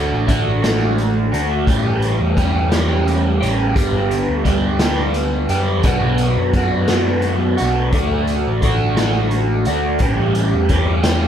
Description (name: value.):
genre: indie rock.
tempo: 58 BPM (dotted quarters).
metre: 6/8.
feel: straight.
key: D major.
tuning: A4 = 440 Hz.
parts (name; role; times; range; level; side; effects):
crunchy overdriven guitar; riff; 0.0-11.3 s; G2 to G4; -18 LUFS; right 1 dB; phaser.
overdriven picked electric bass; bass; 0.0-11.3 s; G1 to F#2; -20 LUFS; equal; none.
raw garage drum kit; drums; 0.3-11.2 s; hi-hat, kick drum, snare drum; -21 LUFS; equal; none.
room: moderate large studio reverb, RT60 1.0 s.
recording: band playing live in one room.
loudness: -15 LUFS.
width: side -9 dB against mid.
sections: 0.0-11.3 A section.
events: none.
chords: 0.0 D; 1.7 A5; 3.8 G; 5.8 Bm; 7.9 D; 10.0 A5.